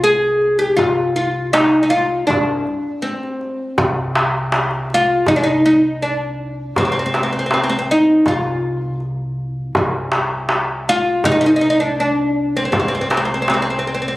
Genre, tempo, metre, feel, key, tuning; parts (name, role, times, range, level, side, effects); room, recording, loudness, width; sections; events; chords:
Turkish makam ensemble; 80 BPM; 4/4; straight; C makam ussak; A4 = 443 Hz
oud; melody; 0.0-14.1 s; C4 to Ab4; -16 LUFS; equal
upright bass; bass; 0.0-14.2 s; C2; -26 LUFS; equal
darbuka; percussion; 0.0-13.8 s; -20 LUFS; equal
wet recital hall reverb, RT60 1.4 s; recorded on a phone in the room, club reverb, compression; -15 LUFS; side -18 dB against mid
0.0-5.3 A section; 5.3-14.2 B section